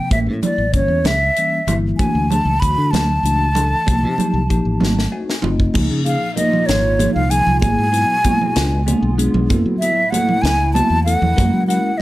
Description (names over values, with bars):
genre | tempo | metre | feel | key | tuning
electric jazz fusion | 64 BPM (dotted quarters) | 6/8 | straight | unclear | A4 = 440 Hz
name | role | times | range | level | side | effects
breathy mellow silver concert flute | melody | 0.0-12.0 s | C#5 to Cb6 | -19 LUFS | equal | none
bell-like tine electric piano | accompaniment | 0.0-11.9 s | C3 to Ab5 | -22 LUFS | left 2 dB | phaser
fingered electric bass | bass | 0.1-11.8 s | Gb1 to Gb3 | -19 LUFS | equal | none
tight funk drum kit | drums | 0.1-11.8 s | crash cymbal, hi-hat, kick drum, snare drum, toms | -21 LUFS | equal | none
congas | percussion | 0.1-11.5 s | none | -22 LUFS | right 4 dB | none
hollow soft pad | sustained chords | 5.8-12.0 s | A2 to F#4 | -27 LUFS | right 1 dB | chorus
room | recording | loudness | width
light reverb, small room ambience | none | -14 LUFS | side -16 dB against mid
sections
0.0-5.8 A section; 5.8-12.0 B section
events
drum fill 4.8-5.8; tine electric piano fill 4.8-5.8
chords
0.1 A7b9; 2.0 Dmaj9; 3.9 Cm7; 4.8 Ab7b9; 5.8 Dbmaj13; 7.6 Eadd9/G#; 8.6 Db7b9; 9.5 Gbm7; 11.4 Gb7